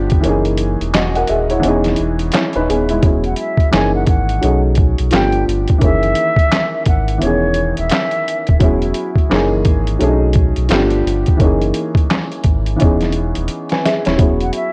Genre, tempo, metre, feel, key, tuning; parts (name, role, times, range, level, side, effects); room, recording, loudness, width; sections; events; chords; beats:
lo-fi hip hop; 86 BPM; 4/4; swing 61% on 16ths; A4 = 440 Hz
warm upright piano; accompaniment; 0.0-14.7 s; D#3 to G#5; -20 LUFS; equal; cassette tape, low-pass filter
sub bass with octave; bass; 0.0-14.5 s; D#1 to B1; -21 LUFS; equal; transformer saturation
lo-fi sampler-style drum kit; drums; 0.1-14.7 s; handclaps, hi-hat, kick drum, snare drum; -18 LUFS; equal; overdrive
concert flute; melody; 3.3-8.6, 14.4-14.7 s; C#5 to G#5; -22 LUFS; equal; low-pass filter
light reverb, studio ambience; worn, warbling old tape, cassette tape, warbly pitch drift; -15 LUFS; mono
0.0-3.0 A section; 3.0-14.7 B section
kick muted 0.2-3.0; drum fill 13.5-14.2
0.2 F#13; 1.6 C#m9/E; 3.0 E6; 3.7 F#13; 4.4 B13; 5.1 G9; 5.8 F#13; 7.2 C#m9; 8.6 E6; 9.3 F#13; 10.0 B13; 10.7 G9; 11.4 F#13; 12.8 C#m9; 14.2 E6
| 0.24 0.94 1.64 2.33 | 3.03 3.73 4.43 5.12 | 5.82 6.52 7.22 7.92 | 8.61 9.31 10.01 10.71 | 11.40 12.10 12.80 13.50 | 14.19